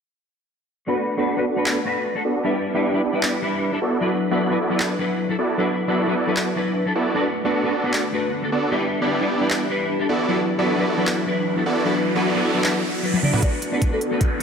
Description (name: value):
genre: future bass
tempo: 153 BPM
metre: 4/4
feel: half-time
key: D major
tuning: A4 = 439 Hz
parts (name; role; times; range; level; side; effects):
- clean electric guitar; accompaniment; 0.9-14.4 s; F#3 to D5; -23 LUFS; left 2 dB; ensemble chorus, sidechain pumping, low-pass filter, digital delay
- supersaw chords; riff; 0.9-14.3 s; B3 to D5; -23 LUFS; right 1 dB; sidechain pumping, low-pass filter, digital delay
- trap drum kit; drums; 1.7-14.4 s; handclaps, hi-hat, toms; -25 LUFS; left 1 dB; high-pass filter on snare, high-pass filter on toms, high-pass filter on hats
- shimmering ambient pad; sustained chords; 7.8-14.4 s; D3 to A4; -29 LUFS; left 1 dB; chorus, built-in reverb, sidechain pumping
- riser; sound effects; 11.3-14.4 s; none; -30 LUFS; right 3 dB; none
- warm velvety synth lead; melody; 13.4-14.1 s; A4 to D5; -29 LUFS; equal; chorus, sidechain pumping, digital delay
- electronic kick drum; drums; 13.4-14.3 s; none; -21 LUFS; equal; none
room: moderate lush hall reverb, RT60 1.9 s, digital ambience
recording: none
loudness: -19 LUFS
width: side -6 dB against mid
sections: 0.9-13.4 A section; 13.4-14.4 B section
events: filter sweep on supersaw synth 0.9-13.4, 13.4-14.4; riser 11.3-13.4, 13.4-14.4; drum fill 13.1; build-up 13.4-14.4; filter sweep on soft synth lead 13.4-14.4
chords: 0.9 Bm7; 2.4 Em7; 3.8 D69; 7.2 Bm7; 8.7 Em7; 10.1 D69; 13.4 Bm7